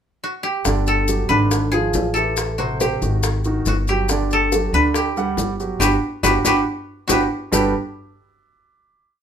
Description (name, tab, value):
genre	Afro-Cuban jazz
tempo	140 BPM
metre	4/4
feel	straight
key	G major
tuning	A4 = 440 Hz
part	koto	melody	0.2-7.7 s	F#4 to B4	-21 LUFS	equal	none
part	maracas	percussion	0.6-7.6 s	none	-26 LUFS	left 5 dB	none
part	warm upright piano	accompaniment	0.7-7.7 s	C3 to F#5	-22 LUFS	right 3 dB	none
part	upright bass	bass	0.7-7.7 s	G1 to D2	-23 LUFS	left 1 dB	none
part	bongos	percussion	0.7-7.6 s	none	-26 LUFS	left 3 dB	none
room	moderate studio reverb, RT60 0.8 s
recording	minimal, uncompressed stereo recording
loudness	-17 LUFS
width	side -8 dB against mid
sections	0.0-0.7 pickup bar; 0.7-7.5 A section; 7.5-9.2 final chord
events	band accent 5.8-7.5; drum fill 6.9-7.5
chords	0.0 N.C.; 0.7 Gsus2; 1.5 G13b9/Ab; 2.4 Am7; 3.2 Ab5; 4.1 Gmaj9